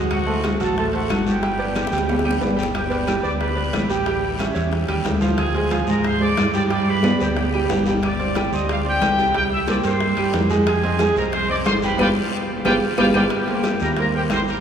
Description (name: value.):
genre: latin, salsa.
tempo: 182 BPM.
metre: 4/4.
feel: straight.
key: unclear.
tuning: A4 = 440 Hz.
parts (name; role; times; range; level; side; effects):
bright concert grand piano; accompaniment; 0.0-14.6 s; F3 to Ab5; -23 LUFS; right 3 dB; none.
fingered electric bass; bass; 0.0-14.6 s; G1 to Ab2; -24 LUFS; equal; none.
bright trumpet section; melody; 0.1-14.6 s; F#4 to E6; -25 LUFS; left 1 dB; none.
bongos; percussion; 0.1-14.5 s; none; -29 LUFS; left 2 dB; none.
claves; percussion; 0.1-14.5 s; none; -37 LUFS; left 5 dB; none.
congas; percussion; 0.1-14.6 s; none; -26 LUFS; left 1 dB; none.
guiro; percussion; 0.1-14.6 s; none; -36 LUFS; left 7 dB; none.
timbales; percussion; 0.1-14.5 s; none; -28 LUFS; right 2 dB; none.
room: wet cathedral reverb, RT60 5.1 s.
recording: recorded in a church or concert hall, small room ambience.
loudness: -18 LUFS.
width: side -8 dB against mid.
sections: 0.0-2.7 A section; 2.7-13.3 B section; 13.3-14.6 A section.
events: drum fill 1.8-2.7, 7.0-8.0, 12.5-13.3; band accent 12.0-13.3.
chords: 0.1 D7; 1.4 G; 4.1 A7; 5.4 Dm7b5; 6.7 G; 8.0 Gsus4; 9.3 C7(no3); 10.7 Fm7; 12.0 G7; 13.3 Cm7.